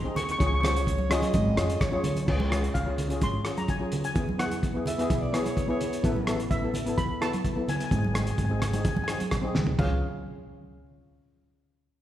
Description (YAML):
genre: calypso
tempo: 128 BPM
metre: 4/4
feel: straight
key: unclear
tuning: A4 = 440 Hz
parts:
  - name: steel pan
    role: melody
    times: 0.0-10.0 s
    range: E5 to Db6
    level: -34 LUFS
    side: equal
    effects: none
  - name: steel pan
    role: accompaniment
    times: 0.0-10.0 s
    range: B3 to A4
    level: -31 LUFS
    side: left 1 dB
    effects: none
  - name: upright bass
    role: bass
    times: 0.0-10.0 s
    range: Ab1 to F2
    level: -30 LUFS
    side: equal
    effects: none
  - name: cloth-damped thuddy drum kit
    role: drums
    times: 0.2-9.9 s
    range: crash cymbal, hi-hat, kick drum, rim click, snare drum, toms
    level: -30 LUFS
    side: equal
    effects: none
  - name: congas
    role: percussion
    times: 0.2-10.0 s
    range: none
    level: -34 LUFS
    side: right 2 dB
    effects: none
  - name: breathy alto saxophone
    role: second line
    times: 0.6-6.4, 9.8-10.0 s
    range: Ab4 to E5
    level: -35 LUFS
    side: right 2 dB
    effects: none
room: moderate concert hall reverb, RT60 1.7 s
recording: heard from further back in the room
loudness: -24 LUFS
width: side -12 dB against mid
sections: 0.0-2.3 A section; 2.3-9.8 B section; 9.8-11.7 C section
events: drum fill 1.7-2.3, 9.6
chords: 0.4 Db; 4.2 E; 6.0 Asus2; 7.9 Ab; 9.8 Db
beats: | 0.40 0.87 1.34 1.81 | 2.28 2.75 3.22 3.69 | 4.16 4.63 5.10 5.57 | 6.04 6.51 6.98 7.45 | 7.92 8.39 8.86 9.32 | 9.79